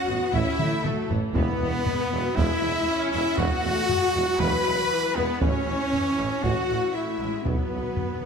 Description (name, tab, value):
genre	cinematic, epic orchestral film score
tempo	118 BPM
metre	4/4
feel	straight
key	E major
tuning	A4 = 440 Hz
part	rich symphonic violin section	melody	0.0-8.3 s	A4 to B5	-33 LUFS	left 3 dB	none
part	warm symphonic violin section	second line	0.0-8.3 s	A4 to B5	-35 LUFS	left 4 dB	none
part	rich symphonic viola section	accompaniment	0.0-8.3 s	E3 to C#4	-32 LUFS	right 2 dB	none
part	mellow French horn section	sustained chords	0.0-8.3 s	A3 to B4	-30 LUFS	left 7 dB	none
part	clear trumpet	stabs	0.0-8.3 s	A3 to B4	-30 LUFS	right 2 dB	none
part	rich symphonic cello section	bass	0.0-8.3 s	A3 to B4	-30 LUFS	right 2 dB	none
part	warm symphonic double bass section	bass	0.1-8.3 s	A1 to E2	-32 LUFS	right 5 dB	none
part	warm tuba	bass	0.1-8.3 s	E1 to B1	-34 LUFS	right 4 dB	none
part	taiko ensemble	drums	0.3-8.2 s	none	-30 LUFS	equal	none
part	timpani	percussion	1.3-2.1, 7.5-8.3 s	E2 to B2	-35 LUFS	left 2 dB	none
room	wet concert hall reverb, RT60 2.0 s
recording	none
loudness	-22 LUFS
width	side -6 dB against mid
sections	0.0-8.3 A section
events	drum fill 0.6-1.4; timpani fill 7.5-8.3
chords	0.0 A; 1.4 Esus2; 5.4 A; 7.5 B5